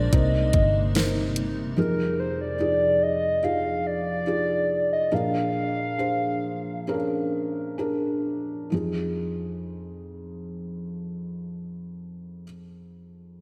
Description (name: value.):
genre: pop ballad.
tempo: 63-73 BPM.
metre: 4/4.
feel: straight.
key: F dorian.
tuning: A4 = 440 Hz.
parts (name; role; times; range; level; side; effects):
hollow clarinet-like synth lead; melody; 0.0-7.8 s; Bb4 to F5; -28 LUFS; equal; chorus, phaser, slapback echo, delay.
felt-muted upright piano; accompaniment; 0.0-13.4 s; F1 to C5; -30 LUFS; equal; none.
granular cloud pad; sustained chords; 0.0-1.7 s; C3 to Eb4; -37 LUFS; equal; built-in reverb.
vintage muted fingered electric bass; bass; 0.0-1.7 s; G1 to C2; -27 LUFS; equal; none.
smooth R&B drum kit; drums; 0.1-1.6 s; hi-hat, kick drum, snare drum; -26 LUFS; equal; none.
room: wet lush hall reverb, RT60 2.2 s.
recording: big arena sound.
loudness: -26 LUFS.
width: mono.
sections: 0.0-1.8 A section; 1.8-8.7 B section; 8.7-12.5 C section.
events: slowing down 1.8-8.7.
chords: 0.1 Cm7; 1.8 Fm7; 5.1 Bb7; 8.7 Fm7.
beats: 0.13 0.95 | 1.77 2.59 3.42 4.26 | 5.12 5.99 6.87 7.79 | 8.72 9.67 10.62 11.57.